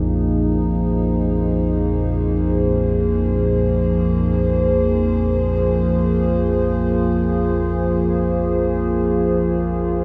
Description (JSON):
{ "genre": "dark ambient drone", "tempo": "free time", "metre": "none", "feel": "none", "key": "unclear", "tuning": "A4 = 436 Hz", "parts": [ { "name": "dark analog pad", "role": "sustained chords", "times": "0.0-10.0 s", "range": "F3 to C5", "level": "-21 LUFS", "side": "equal", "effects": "chorus" }, { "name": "deep rumbling drone", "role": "drone", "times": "0.0-10.0 s", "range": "Bb1 to F2", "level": "-24 LUFS", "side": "equal", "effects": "built-in reverb" } ], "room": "wet huge ambient reverb, RT60 7.5 s", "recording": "none", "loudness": "-19 LUFS", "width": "mono", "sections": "0.0-10.0 A section", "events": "none", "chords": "0.0 Fm" }